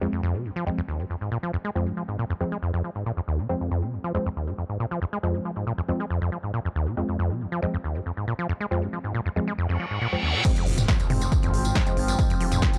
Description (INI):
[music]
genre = driving peak-time techno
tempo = 138 BPM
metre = 4/4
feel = straight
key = F minor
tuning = A4 = 440 Hz
[part]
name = acid bass, saw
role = riff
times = 0.0-12.8 s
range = F1 to Ab3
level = -29 LUFS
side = equal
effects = sidechain pumping, tape echo
[part]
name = wavetable chord stab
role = stabs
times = 0.0-12.8 s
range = F3 to C4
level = -35 LUFS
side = equal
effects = sidechain pumping, tape echo
[part]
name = reverse cymbal and impact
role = sound effects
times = 9.7-12.2 s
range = none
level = -34 LUFS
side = equal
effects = none
[part]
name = overtone-sweeping drone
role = drone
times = 10.8-12.8 s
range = F3 to C4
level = -34 LUFS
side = equal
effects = chorus, built-in reverb, sidechain pumping
[part]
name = electronic kick drum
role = drums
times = 10.4-12.7 s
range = none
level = -26 LUFS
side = equal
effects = none
[part]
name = techno drum kit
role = drums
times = 10.4-12.8 s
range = crash cymbal, hi-hat, snare drum, tambourine, toms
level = -31 LUFS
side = equal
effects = low-pass filter on snare, sidechain pumping on hats, low-pass filter on hats, sidechain pumping on toms, low-pass filter on toms, sidechain pumping on perc, low-pass filter on perc, sidechain pumping on cymbals, low-pass filter on cymbals
[part]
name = dark detuned saw bass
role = bass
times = 10.7-12.6 s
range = F1 to Ab1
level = -29 LUFS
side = equal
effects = sidechain pumping
[sound]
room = digital ambience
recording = dry, gritty hardware recording, cassette tape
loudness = -26 LUFS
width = mono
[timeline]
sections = 0.0-10.4 A section; 10.4-12.8 B section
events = filter sweep on drum 0.0-10.4; filter sweep on acid bass 0.0-10.4; reverse cymbal 9.7-10.4; drop 10.4-12.8; impact 10.4-12.2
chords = 0.0 Fm